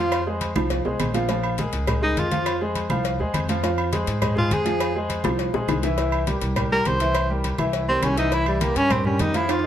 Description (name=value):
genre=Afro-Cuban jazz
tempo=205 BPM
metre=4/4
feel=straight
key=F minor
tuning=A4 = 440 Hz
part: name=clear tenor saxophone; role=melody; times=0.0-9.7 s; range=G3 to C5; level=-23 LUFS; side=equal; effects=none
part: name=warm concert grand piano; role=accompaniment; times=0.0-9.7 s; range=E3 to F5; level=-25 LUFS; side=equal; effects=none
part: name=upright bass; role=bass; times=0.0-9.7 s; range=Bb1 to Ab2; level=-27 LUFS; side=equal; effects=none
part: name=agogo bells and timbales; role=percussion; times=0.1-9.7 s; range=none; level=-31 LUFS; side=right 2 dB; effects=none
part: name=claves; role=percussion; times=0.1-9.6 s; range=none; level=-38 LUFS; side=right 10 dB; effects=none
part: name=congas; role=percussion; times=0.1-9.7 s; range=none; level=-31 LUFS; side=left 1 dB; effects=none
part: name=cowbell and bongos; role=percussion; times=0.1-9.6 s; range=none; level=-31 LUFS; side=left 6 dB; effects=none
room=light reverb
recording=none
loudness=-20 LUFS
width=side -10 dB against mid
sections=0.0-9.7 A section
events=tenor saxophone solo 0.0-9.7; drum fill 0.6-1.3, 5.2-6.0, 9.5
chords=0.0 Fm; 1.3 Bbm7; 2.5 Fm; 6.0 C7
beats=| 0.12 0.41 0.70 1.00 | 1.29 1.58 1.88 2.17 | 2.46 2.75 3.05 3.34 | 3.63 3.93 4.22 4.51 | 4.81 5.10 5.39 5.68 | 5.98 6.27 6.56 6.86 | 7.15 7.44 7.74 8.03 | 8.32 8.61 8.90 9.20 | 9.49